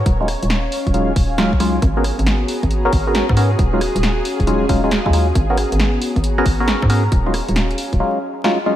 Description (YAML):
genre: UK garage, two-step garage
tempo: 136 BPM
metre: 4/4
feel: swing 66% on 16ths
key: G# minor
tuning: A4 = 440 Hz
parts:
  - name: soft string machine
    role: sustained chords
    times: 0.0-8.0 s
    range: G#4 to C#5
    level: -28 LUFS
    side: equal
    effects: ensemble chorus, sidechain pumping
  - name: hollow knocking FM bass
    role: bass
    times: 0.0-8.0 s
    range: D#1 to G#2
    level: -19 LUFS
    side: equal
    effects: none
  - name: airy breathy pad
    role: texture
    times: 0.0-8.0 s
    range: B3 to A#5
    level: -26 LUFS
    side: left 1 dB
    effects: chorus, sidechain pumping
  - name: electronic kick drum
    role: drums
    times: 0.1-8.0 s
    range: none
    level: -18 LUFS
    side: equal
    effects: none
  - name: punchy analog drum machine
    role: drums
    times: 0.1-8.6 s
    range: hi-hat, rim click, snare drum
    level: -24 LUFS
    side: right 1 dB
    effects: none
  - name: percussive organ stab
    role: stabs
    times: 0.2-8.8 s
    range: F#3 to A#4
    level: -20 LUFS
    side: equal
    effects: chorus, phaser, analog delay
room: light reverb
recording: vinyl crackle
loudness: -15 LUFS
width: side -12 dB against mid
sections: 0.0-8.8 A section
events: filter sweep on synth stab 0.0-8.8; drum fill 8.4-8.8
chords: 0.1 D#m11; 1.8 G#m11; 3.6 D#m11; 5.4 G#m11; 7.1 D#m11